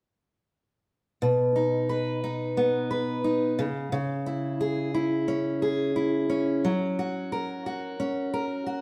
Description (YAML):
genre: pop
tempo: 89 BPM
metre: 4/4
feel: straight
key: B major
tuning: A4 = 440 Hz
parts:
  - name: fingerpicked steel-string acoustic guitar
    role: solo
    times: 1.2-8.8 s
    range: B2 to B4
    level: -27 LUFS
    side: equal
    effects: none
room: moderate stone room reverb, RT60 1.2 s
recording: band playing live in one room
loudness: -27 LUFS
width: mono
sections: 1.2-8.8 A section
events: none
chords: 1.2 B; 3.6 C#m; 6.6 F#